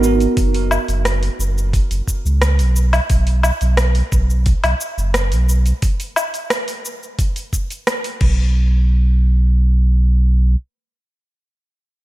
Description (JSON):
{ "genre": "sunset chillout", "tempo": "88 BPM", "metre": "4/4", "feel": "straight", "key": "B major", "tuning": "A4 = 440 Hz", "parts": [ { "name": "warm sub bass", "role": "bass", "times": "0.0-10.6 s", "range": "F#1 to C#2", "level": "-14 LUFS", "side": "equal", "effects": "none" }, { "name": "deep house drum kit", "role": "drums", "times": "0.0-8.3 s", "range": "crash cymbal, hi-hat, rim click, shaker, woodblock", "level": "-22 LUFS", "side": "equal", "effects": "overdrive, studio reverb" }, { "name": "electronic kick drum", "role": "drums", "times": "0.4-8.4 s", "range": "none", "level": "-18 LUFS", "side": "equal", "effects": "studio reverb" } ], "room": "light reverb, digital ambience", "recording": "none", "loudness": "-14 LUFS", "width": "side -16 dB against mid", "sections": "0.0-8.6 A section; 8.6-11.3 B section", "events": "none", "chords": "none" }